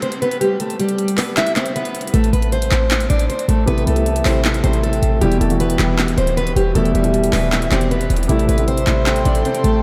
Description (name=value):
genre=hip hop, trap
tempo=156 BPM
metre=4/4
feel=half-time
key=A minor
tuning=A4 = 439 Hz
part: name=picked plugged-in steel-string acoustic guitar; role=melody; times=0.0-9.8 s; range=G3 to E5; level=-22 LUFS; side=equal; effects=lush chorus, low-pass filter
part: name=trap drum kit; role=drums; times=0.0-9.7 s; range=handclaps, hi-hat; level=-26 LUFS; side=equal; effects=overdrive
part: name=short 808-style bass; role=bass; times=2.1-9.8 s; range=D1 to C2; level=-20 LUFS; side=equal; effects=none
part: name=dark concert grand piano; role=accompaniment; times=3.7-9.8 s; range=B2 to G4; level=-22 LUFS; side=equal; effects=lush chorus, low-pass filter
part: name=airy breathy pad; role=sustained chords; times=8.7-9.8 s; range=A4 to C6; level=-26 LUFS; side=equal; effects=chorus
room=wet cathedral reverb, RT60 4.3 s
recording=dreamy mix soaked in reverb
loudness=-17 LUFS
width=mono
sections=0.0-9.8 A section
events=break 0.0-3.7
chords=0.0 Em (rootless); 2.1 Am7; 5.2 Em; 8.3 Am7